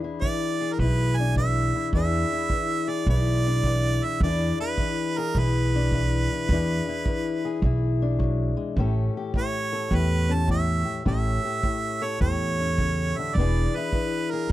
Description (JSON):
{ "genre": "acoustic country blues, solo or duo", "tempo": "105 BPM", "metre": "4/4", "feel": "swing 66% on 8ths", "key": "E mixolydian", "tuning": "A4 = 438 Hz", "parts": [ { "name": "fingerpicked old ladder-braced acoustic guitar", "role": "accompaniment", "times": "0.0-14.5 s", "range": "A2 to A4", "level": "-28 LUFS", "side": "left 5 dB", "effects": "none" }, { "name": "bright harmonica", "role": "melody", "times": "0.2-14.5 s", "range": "A#4 to A5", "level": "-28 LUFS", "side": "right 5 dB", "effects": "none" }, { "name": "kick drum", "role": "drums", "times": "0.2-14.5 s", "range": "none", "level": "-28 LUFS", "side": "right 1 dB", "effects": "none" }, { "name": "upright bass", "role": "bass", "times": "0.8-14.5 s", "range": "E1 to E2", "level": "-24 LUFS", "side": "right 1 dB", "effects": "none" } ], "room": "little or no reverb", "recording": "dry, close 1970s-style studio recording", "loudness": "-22 LUFS", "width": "side -15 dB against mid", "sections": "0.0-14.5 A section", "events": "none", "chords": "0.0 E7; 8.8 A7; 13.4 E7" }